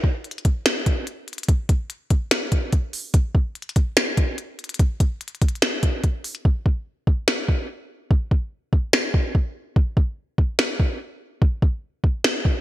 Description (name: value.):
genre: hip hop.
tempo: 145 BPM.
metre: 4/4.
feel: half-time.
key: none.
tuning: none.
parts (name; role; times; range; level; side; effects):
minimal click drum kit; drums; 0.0-12.5 s; hi-hat, kick drum, snare drum; -19 LUFS; equal; gated reverb.
room: light reverb.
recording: bright 1980s-style digital production.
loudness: -20 LUFS.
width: side -14 dB against mid.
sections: 0.0-12.6 A section.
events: hi-hats muted 6.5-12.6.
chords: none.